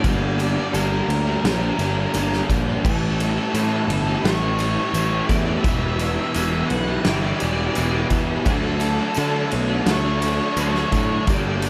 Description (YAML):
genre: rock, shoegaze and dream pop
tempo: 86 BPM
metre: 4/4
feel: straight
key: D major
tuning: A4 = 437 Hz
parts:
  - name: octave-fuzz lead guitar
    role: melody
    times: 0.0-11.7 s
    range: A4 to F#5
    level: -31 LUFS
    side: equal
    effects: distortion, slapback echo
  - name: twelve-string electric guitar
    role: arpeggios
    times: 0.0-11.7 s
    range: E3 to A4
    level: -35 LUFS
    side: equal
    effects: none
  - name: crunchy overdriven guitar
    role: riff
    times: 0.0-11.7 s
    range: E2 to G4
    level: -31 LUFS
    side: equal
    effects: ensemble chorus
  - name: overdriven electric guitar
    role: riff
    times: 0.0-11.7 s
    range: E2 to D4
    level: -30 LUFS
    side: equal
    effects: none
  - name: raw garage guitar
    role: riff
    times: 0.0-11.7 s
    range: G2 to E4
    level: -32 LUFS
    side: equal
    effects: overdrive, reverse reverb
  - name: fuzz picked electric bass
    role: bass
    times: 0.0-11.7 s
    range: E1 to D3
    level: -26 LUFS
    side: equal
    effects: overdrive
  - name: loose indie drum kit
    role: drums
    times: 0.0-11.7 s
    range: crash cymbal, kick drum, ride cymbal, snare drum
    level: -27 LUFS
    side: equal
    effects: none
  - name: tambourine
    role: percussion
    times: 0.0-11.7 s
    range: none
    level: -41 LUFS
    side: equal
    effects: none
room: light reverb, small room reverb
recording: none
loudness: -21 LUFS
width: mono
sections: 0.0-11.7 A section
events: none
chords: 0.0 Gm; 2.8 A5; 5.6 Em7; 8.5 Dmaj7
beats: | 0.05 0.75 1.45 2.15 | 2.85 3.55 4.25 4.95 | 5.65 6.35 7.05 7.76 | 8.46 9.16 9.87 10.58 | 11.28